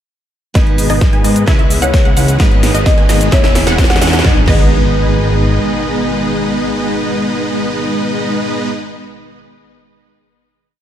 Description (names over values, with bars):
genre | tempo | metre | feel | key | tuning
EDM, festival progressive house | 130 BPM | 4/4 | straight | G# minor | A4 = 435 Hz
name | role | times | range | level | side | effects
picked steel-string acoustic guitar | accompaniment | 0.5-8.7 s | B3 to B4 | -24 LUFS | right 5 dB | sidechain pumping, ping-pong delay
lush unison pad | sustained chords | 0.6-8.5 s | B2 to G#4 | -24 LUFS | equal | chorus, sidechain pumping
wide unison pluck | arpeggios | 0.6-8.7 s | D#5 to G#5 | -22 LUFS | equal | sidechain pumping, ping-pong delay
dense compressed supersaw | riff | 0.6-8.7 s | G#3 to G#5 | -17 LUFS | equal | sidechain pumping, low-pass filter, ping-pong delay
fat analog bass | bass | 0.6-5.6 s | E1 to G#2 | -16 LUFS | equal | sidechain pumping
big-room dance drum kit | drums | 0.6-4.6 s | crash cymbal, hi-hat, rim click, shaker, snare drum | -19 LUFS | equal | none
electronic kick drum | drums | 0.6-4.6 s | none | -12 LUFS | equal | none
riser and impact | sound effects | 2.7-8.5 s | none | -22 LUFS | equal | none
marimba with medium mallets | melody | 1.8-4.2 s | C#5 to F#5 | -22 LUFS | left 4 dB | ping-pong delay
room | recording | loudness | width
light reverb, digital ambience | dark, warm production | -10 LUFS | side -10 dB against mid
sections
0.6-4.2 build; 4.2-7.9 final chord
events
build-up 0.6-4.2; drum fill 0.6-4.2; filter sweep on supersaw synth 0.6-4.2; filter sweep on synth pluck 0.6-4.2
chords
0.6 G#m; 1.5 C#m7; 2.4 G#m; 3.3 E; 4.2 G#m